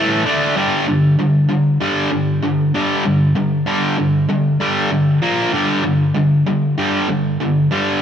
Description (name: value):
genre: rock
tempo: 96 BPM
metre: 4/4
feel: straight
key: G minor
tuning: A4 = 438 Hz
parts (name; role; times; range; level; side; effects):
- distorted electric guitar; solo; 0.0-8.0 s; G2 to D4; -14 LUFS; equal; distortion
room: wet plate reverb, RT60 2.5 s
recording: bright 1980s-style digital production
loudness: -14 LUFS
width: side -8 dB against mid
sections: 0.0-8.0 A section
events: none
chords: 0.2 D5; 0.6 G5; 5.2 Bb5; 5.5 G5